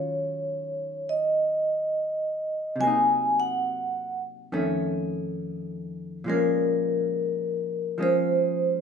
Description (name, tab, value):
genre	jazz ballad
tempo	69 BPM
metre	4/4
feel	swing 66% on 8ths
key	unclear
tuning	A4 = 440 Hz
part	vibraphone with medium mallets	melody	0.0-8.8 s	Bb4 to Ab5	-24 LUFS	equal	none
part	vintage hollow-body jazz guitar	accompaniment	0.0-8.8 s	F2 to F4	-30 LUFS	left 1 dB	none
room	wet large studio reverb, RT60 0.8 s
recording	band playing live in one room, nothing above 10.5 kHz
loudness	-24 LUFS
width	side -6 dB against mid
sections	0.0-8.8 A section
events	none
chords	0.0 Ebm9; 2.8 Cm7b5; 4.5 F7b13; 6.2 Bbm7